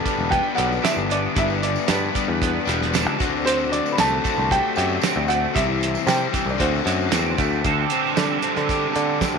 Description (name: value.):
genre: indie rock.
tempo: 115 BPM.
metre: 4/4.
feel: straight.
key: unclear.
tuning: A4 = 440 Hz.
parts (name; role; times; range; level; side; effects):
dark upright piano; melody; 0.0-7.3 s; C5 to B5; -24 LUFS; right 1 dB; tape echo.
tine electric piano; second line; 0.0-7.3 s; C4 to B4; -33 LUFS; right 1 dB; medium stereo tremolo.
string machine, cellos; sustained chords; 0.0-7.6 s; B4 to C6; -34 LUFS; equal; none.
overdriven electric guitar; riff; 0.0-9.4 s; G2 to A4; -24 LUFS; left 16 dB; none.
overdriven electric guitar; riff; 0.0-9.4 s; G2 to A4; -26 LUFS; right 16 dB; analog chorus.
cloth-damped thuddy drum kit; drums; 0.1-9.3 s; hi-hat, kick drum, snare drum, tambourine; -26 LUFS; right 5 dB; none.
tambourine; percussion; 0.1-7.6 s; none; -39 LUFS; right 19 dB; none.
picked electric bass; bass; 0.2-9.4 s; E1 to D3; -25 LUFS; equal; none.
room: light reverb, small room ambience.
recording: 1960s-style stereo with parts hard left and right.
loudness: -18 LUFS.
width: side -5 dB against mid.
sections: 0.0-7.6 A section; 7.6-9.4 B section.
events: none.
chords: 0.0 G; 3.2 D7sus4; 5.5 C; 6.6 D5; 7.6 D7sus4.